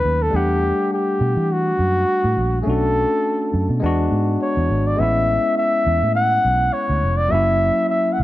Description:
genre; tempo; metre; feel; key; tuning
lush 1970s-style soul; 103 BPM; 4/4; swing 54% on 16ths; unclear; A4 = 441 Hz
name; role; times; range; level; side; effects
breathy flugelhorn; melody; 0.0-8.2 s; F#4 to F#5; -19 LUFS; equal; none
barky tine electric piano; accompaniment; 0.0-8.2 s; F#3 to F#5; -23 LUFS; left 2 dB; none
vintage muted fingered electric bass; bass; 0.0-8.2 s; E#1 to E3; -20 LUFS; right 1 dB; none
room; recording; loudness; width
light reverb; nothing above 10.3 kHz; -16 LUFS; side -15 dB against mid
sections
0.0-8.2 A section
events
none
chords
0.3 Em11; 2.7 Bm7; 3.8 E9; 5.0 Amaj9; 7.3 F#7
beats
| 0.34 0.92 1.50 2.08 | 2.66 3.25 3.83 4.41 | 4.99 5.57 6.16 6.74 | 7.32 7.90

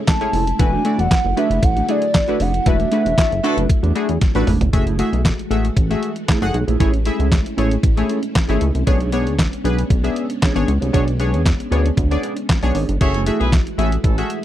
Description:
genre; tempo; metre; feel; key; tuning
early-eighties boogie funk; 116 BPM; 4/4; straight; B dorian; A4 = 438 Hz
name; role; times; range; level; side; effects
string machine, full ensemble; sustained chords; 0.0-14.4 s; C#3 to F#4; -28 LUFS; equal; ensemble chorus
hollow clarinet-like synth lead; melody; 0.1-4.2 s; D5 to A5; -21 LUFS; equal; chorus, slapback echo
clean 12-bit digital drum machine; drums; 0.1-14.4 s; handclaps, hi-hat, kick drum, snare drum, toms; -18 LUFS; equal; none
funky polysynth comp; accompaniment; 0.2-14.4 s; A3 to F#5; -22 LUFS; left 4 dB; chorus
mellow electric guitar; riff; 0.2-14.2 s; A3 to D5; -25 LUFS; right 6 dB; lush chorus
chorused synth bass; bass; 0.3-14.2 s; E1 to E2; -19 LUFS; equal; none
clear horn section; second line; 3.2-3.6, 13.0-14.3 s; A3 to C#5; -25 LUFS; right 1 dB; none
room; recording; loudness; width
little or no reverb; dry, close 1970s-style studio recording; -15 LUFS; side -12 dB against mid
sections
0.0-4.7 A section; 4.7-14.4 B section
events
band accent 2.7-4.7; drum fill 4.2-4.7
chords
0.0 Amaj7; 0.6 E9sus4; 4.7 F#m9; 6.8 Amaj7; 8.9 Bm69; 13.0 F#m9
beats
0.08 | 0.59 1.11 1.63 2.15 | 2.66 3.18 3.70 4.21 | 4.73 5.25 5.77 6.28 | 6.80 7.32 7.83 8.35 | 8.87 9.39 9.90 10.42 | 10.94 11.46 11.97 12.49 | 13.01 13.53 14.04

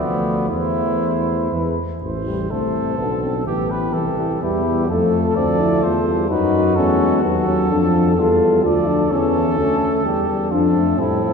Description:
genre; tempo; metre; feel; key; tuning
classical, brass quintet; 127 BPM; 3/4; rubato; A minor, D minor from 7.7 s; A4 = 441 Hz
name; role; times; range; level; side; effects
dark trumpet; melody; 0.0-11.3 s; E4 to D5; -24 LUFS; left 5 dB; none
mellow trumpet; second line; 0.0-11.3 s; B3 to D5; -24 LUFS; right 4 dB; none
mellow French horn; accompaniment; 0.0-11.3 s; E3 to A4; -21 LUFS; left 4 dB; none
mellow trombone; accompaniment; 0.0-11.3 s; C3 to A3; -25 LUFS; right 4 dB; none
clear bass trombone; bass; 0.0-11.3 s; A1-20c to A2; -22 LUFS; right 1 dB; none
room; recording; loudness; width
wet church reverb, RT60 3.3 s; recorded in a church or concert hall; -16 LUFS; side -5 dB against mid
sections
0.0-2.0 A section; 2.0-11.3 B section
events
none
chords
0.5 Am/E; 1.5 E; 2.0 Am; 3.5 Em/A; 4.9 F; 6.3 B7; 7.7 Dm; 9.1 A7; 10.5 Dm/F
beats
| 0.50 1.01 1.52 | 2.02 2.50 2.99 | 3.47 3.94 4.42 | 4.89 5.37 5.84 | 6.31 6.78 7.25 | 7.71 8.18 8.64 | 9.11 9.58 10.05 | 10.52 10.99

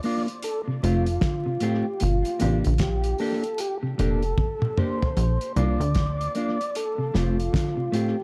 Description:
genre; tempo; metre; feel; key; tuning
roots reggae; 76 BPM; 4/4; swing 62% on 16ths; F major; A4 = 439 Hz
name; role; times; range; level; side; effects
mellow electric guitar; accompaniment; 0.0-8.2 s; A3 to G4; -32 LUFS; equal; tape echo, plate reverb
cloth-damped thuddy drum kit; drums; 0.0-8.2 s; hi-hat, kick drum, snare drum, toms; -30 LUFS; equal; none
tonewheel organ; melody; 0.1-8.2 s; F4 to D5; -32 LUFS; equal; overdrive, slow rotary speaker, tape echo, plate reverb
semi-hollow electric guitar; arpeggios; 0.7-8.1 s; A2 to D3; -33 LUFS; equal; spring reverb
plucky analog bass; bass; 0.8-7.5 s; F1 to D2; -26 LUFS; equal; none
room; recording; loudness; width
moderate studio reverb, RT60 0.5 s; dark, warm production, vinyl crackle; -25 LUFS; mono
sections
0.0-8.2 A section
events
drum fill 4.4-5.2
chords
0.4 F; 2.0 Gm; 5.2 Bb; 6.7 F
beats
0.43 1.22 | 2.01 2.80 3.59 4.38 | 5.17 5.96 6.74 7.53

